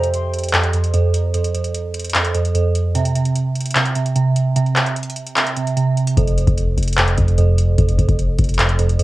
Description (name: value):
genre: hip hop, trap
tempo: 149 BPM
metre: 4/4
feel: half-time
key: unclear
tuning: A4 = 440 Hz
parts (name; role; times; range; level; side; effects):
- concert harp; melody; 0.0-1.5 s; G4 to G5; -26 LUFS; right 2 dB; low-pass filter, cassette tape, analog delay
- glassy digital keys; accompaniment; 0.0-9.0 s; F2 to C3; -17 LUFS; right 2 dB; chorus, low-pass filter, cassette tape
- booming analog drum machine; drums; 0.0-9.0 s; handclaps, hi-hat, kick drum; -19 LUFS; left 1 dB; overdrive, cassette tape
- long sustained 808-style bass; bass; 6.2-9.0 s; F1; -19 LUFS; left 1 dB; none
room: little or no reverb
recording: home recording on cassette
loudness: -15 LUFS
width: side -17 dB against mid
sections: 0.0-9.0 A section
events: break 0.0-6.2; kick muted 5.4-6.2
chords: none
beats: 0.13 0.54 0.94 | 1.34 1.74 2.15 2.55 | 2.95 3.35 3.76 4.16 | 4.56 4.96 5.37 5.77 | 6.17 6.58 6.98 7.38 | 7.78 8.19 8.59 8.99